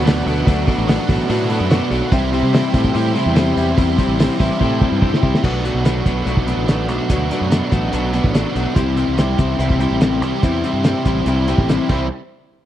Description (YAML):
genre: indie rock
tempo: 144 BPM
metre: 4/4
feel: straight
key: C lydian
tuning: A4 = 441 Hz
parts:
  - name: ensemble organ-string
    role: sustained chords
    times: 0.0-5.4 s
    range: G4 to C6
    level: -31 LUFS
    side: equal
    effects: none
  - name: biting overdriven guitar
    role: riff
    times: 0.0-12.1 s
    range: B2 to G4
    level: -21 LUFS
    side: right 5 dB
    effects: analog chorus, slapback echo
  - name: twelve-string electric guitar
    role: riff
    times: 0.0-12.1 s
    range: B2 to E4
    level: -21 LUFS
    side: left 6 dB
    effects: none
  - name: fuzz fingered electric bass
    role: bass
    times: 0.0-12.1 s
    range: A1 to C3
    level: -21 LUFS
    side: equal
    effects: overdrive
  - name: cloth-damped thuddy drum kit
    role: drums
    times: 0.1-12.0 s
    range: crash cymbal, hi-hat, kick drum, snare drum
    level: -17 LUFS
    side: equal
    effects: none
room: small room reverb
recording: dry, close 1970s-style studio recording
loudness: -15 LUFS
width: side -12 dB against mid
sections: 0.0-5.4 A section; 5.4-12.1 B section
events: drum fill 4.6-5.4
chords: 0.0 Bm7; 2.1 C; 5.4 Bm7; 8.8 C; 12.1 N.C.